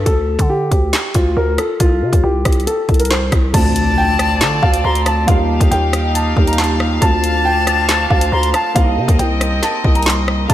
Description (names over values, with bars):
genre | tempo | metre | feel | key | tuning
hip hop, drill | 138 BPM | 4/4 | half-time | D phrygian | A4 = 440 Hz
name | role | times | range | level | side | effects
dark concert grand piano | melody | 0.0-10.5 s | F4 to C6 | -19 LUFS | equal | tape echo
growling 808-style bass | bass | 0.0-10.5 s | C2 to D3 | -18 LUFS | equal | none
drill drum kit | drums | 0.1-10.5 s | crash cymbal, handclaps, hi-hat, kick drum, rim click, snare drum | -16 LUFS | equal | none
silver concert flute | second line | 3.5-10.5 s | A5 to C6 | -20 LUFS | left 2 dB | tape echo
dark concert grand piano | accompaniment | 3.5-10.5 s | G3 to G4 | -23 LUFS | equal | lush chorus
warm studio string section | sustained chords | 3.5-10.5 s | C4 to F5 | -23 LUFS | left 1 dB | none
impact | sound effects | 3.6-5.3 s | none | -25 LUFS | equal | none
room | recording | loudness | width
moderate plate reverb, RT60 2.1 s | dreamy mix soaked in reverb | -12 LUFS | side -12 dB against mid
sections
0.0-3.5 A section; 3.5-10.5 B section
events
impact 3.5-5.3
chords
0.1 D5; 1.8 C5; 3.5 Dm7; 5.3 Ebadd9; 7.0 Dm7; 8.8 Cm7